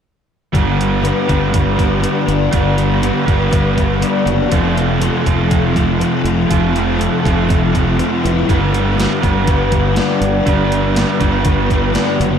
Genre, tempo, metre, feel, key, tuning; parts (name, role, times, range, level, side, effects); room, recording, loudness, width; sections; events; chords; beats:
rock, shoegaze and dream pop; 121 BPM; 4/4; straight; G major; A4 = 438 Hz
crunchy overdriven guitar; riff; 0.5-12.4 s; F3 to B4; -18 LUFS; right 8 dB; reverse reverb
thick fuzz guitar; riff; 0.5-12.4 s; F2 to G3; -18 LUFS; left 9 dB; distortion, ensemble chorus
modern bright fingered electric bass; bass; 0.5-12.4 s; F1 to G1; -18 LUFS; right 1 dB
gated 80s digital drum machine; drums; 0.5-12.3 s; hi-hat, kick drum, snare drum; -18 LUFS; right 1 dB; gated reverb, gated reverb snare
picked twelve-string acoustic guitar; arpeggios; 1.0-12.4 s; E3 to D4; -23 LUFS; left 7 dB; wide subtle chorus, diffuse ambient delay
moderate plate reverb, RT60 1.4 s; dreamy mix soaked in reverb; -12 LUFS; side -8 dB against mid
0.6-12.4 A section
0.6 Gmaj7; 4.5 Fmaj7; 8.5 Gmaj7
| 0.55 1.05 1.54 2.04 | 2.53 3.03 3.52 4.02 | 4.52 5.01 5.51 6.00 | 6.50 6.99 7.49 7.99 | 8.48 8.98 9.47 9.97 | 10.46 10.96 11.45 11.95